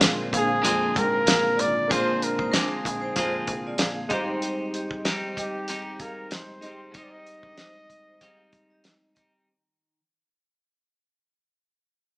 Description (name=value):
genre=indie pop, bedroom pop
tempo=95 BPM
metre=4/4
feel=swing 55% on 16ths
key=unclear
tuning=A4 = 441 Hz
part: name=vibraphone with hard mallets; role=second line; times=0.0-9.3 s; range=D4 to G5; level=-33 LUFS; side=right 1 dB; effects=none
part: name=twelve-string electric guitar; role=accompaniment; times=0.0-10.0 s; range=Ab2 to F4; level=-30 LUFS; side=equal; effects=warbly pitch drift
part: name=warm analog keys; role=accompaniment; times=0.0-9.5 s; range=Ab3 to C5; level=-34 LUFS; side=equal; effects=chorus
part: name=plucky analog bass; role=bass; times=0.0-4.4 s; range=Ab1 to Ab2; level=-34 LUFS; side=equal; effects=none
part: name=damped 70s drum kit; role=drums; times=0.0-9.3 s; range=hi-hat, kick drum, snare drum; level=-25 LUFS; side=equal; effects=none
part: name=mellow trumpet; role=melody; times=0.4-8.9 s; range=G4 to Eb5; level=-27 LUFS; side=equal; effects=none
room=moderate large studio reverb, RT60 1.1 s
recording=band playing live in one room, small speaker sound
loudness=-22 LUFS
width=side -28 dB against mid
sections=0.0-9.5 A section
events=fade-out 0.0-9.5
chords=0.0 Bb9; 4.1 Abmaj7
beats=0.01 0.64 1.27 | 1.90 2.53 3.16 3.79 | 4.42 5.05 5.69 6.32 | 6.95 7.58 8.22 8.85